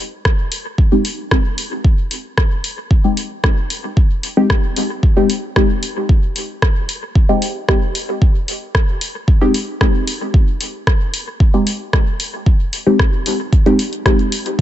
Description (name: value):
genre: dub techno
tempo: 113 BPM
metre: 4/4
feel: straight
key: unclear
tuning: A4 = 438 Hz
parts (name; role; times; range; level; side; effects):
- deep house drum kit; drums; 0.3-14.6 s; hi-hat, rim click; -21 LUFS; equal; dub echo
- electronic kick drum; drums; 0.3-14.6 s; none; -13 LUFS; equal; none
- filtered dub chord stab; stabs; 0.9-14.6 s; Ab3 to G4; -18 LUFS; left 1 dB; chorus, phaser, sidechain pumping, dub echo
room: little or no reverb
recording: nothing above 8.0 kHz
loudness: -14 LUFS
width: side -12 dB against mid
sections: 0.0-14.6 A section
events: filter sweep on synth stab 0.0-14.6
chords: 0.0 Abmaj7